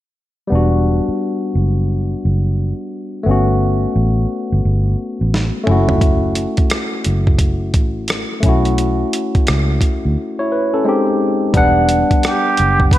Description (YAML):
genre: R&B, neo-soul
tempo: 87 BPM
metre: 4/4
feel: swing 63% on 16ths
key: E dorian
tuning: A4 = 440 Hz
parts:
  - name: barky tine electric piano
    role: accompaniment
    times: 0.5-13.0 s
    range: G3 to F#5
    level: -18 LUFS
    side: left 2 dB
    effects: slapback echo
  - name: vintage muted fingered electric bass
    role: bass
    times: 0.5-13.0 s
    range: E1 to D2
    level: -16 LUFS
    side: equal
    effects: none
  - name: dusty soul sampler-style drum kit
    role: drums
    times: 5.3-13.0 s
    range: hi-hat, kick drum, rim click, snare drum, toms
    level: -16 LUFS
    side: right 1 dB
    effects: none
  - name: trumpet with plunger mute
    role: melody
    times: 12.2-13.0 s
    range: G4 to B4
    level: -15 LUFS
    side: right 4 dB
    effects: slapback echo
room: light reverb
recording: none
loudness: -14 LUFS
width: side -14 dB against mid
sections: 0.5-11.5 A section; 11.5-13.0 B section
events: drum fill 5.3-6.0; silent gap 10.2-11.5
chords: 0.5 Em9; 3.3 Gmaj9#11; 5.7 F#m7; 8.4 B9sus4; 10.8 G#maj7; 11.5 Em9